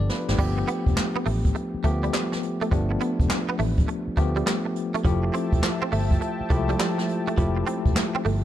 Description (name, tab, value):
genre	R&B, new jack swing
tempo	103 BPM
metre	4/4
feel	swing 65% on 16ths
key	unclear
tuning	A4 = 440 Hz
part	bell-like tine electric piano	accompaniment	0.0-8.4 s	F3 to D5	-27 LUFS	left 2 dB	medium stereo tremolo
part	vintage muted fingered electric bass	bass	0.0-8.4 s	E1 to D2	-26 LUFS	equal	none
part	jazz brush drum kit	drums	0.1-8.4 s	crash cymbal, handclaps, hi-hat, kick drum, snare drum	-25 LUFS	equal	none
part	direct-recorded clean electric guitar	riff	0.4-8.4 s	F3 to C4	-31 LUFS	right 5 dB	ensemble chorus
part	brassy analog pad	sustained chords	5.0-8.4 s	F3 to A5	-32 LUFS	right 1 dB	chorus
room	small room reverb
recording	dark, warm production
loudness	-22 LUFS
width	side -12 dB against mid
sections	0.4-8.4 A section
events	drum fill 0.0-0.4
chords	0.4 G9; 5.0 Fmaj9